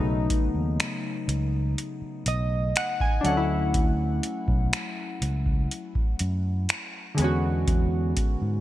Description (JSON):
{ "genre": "contemporary R&B", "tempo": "61 BPM", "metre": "4/4", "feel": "straight", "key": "unclear", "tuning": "A4 = 440 Hz", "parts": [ { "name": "warm analog keys", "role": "accompaniment", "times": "0.0-8.6 s", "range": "C#3 to G#5", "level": "-28 LUFS", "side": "left 1 dB", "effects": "chorus" }, { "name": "fingered electric bass", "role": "bass", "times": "0.0-8.6 s", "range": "B1 to G#2", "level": "-26 LUFS", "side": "equal", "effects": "none" }, { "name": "booming analog drum machine", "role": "drums", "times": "0.3-8.4 s", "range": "finger snaps, hi-hat, kick drum", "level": "-26 LUFS", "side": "equal", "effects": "gated reverb" } ], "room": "light reverb", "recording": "bright 1980s-style digital production", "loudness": "-23 LUFS", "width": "side -14 dB against mid", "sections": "0.0-8.6 A section", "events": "synth keys fill 1.8-3.7", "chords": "0.0 B7; 3.2 Dmaj7; 7.2 E13" }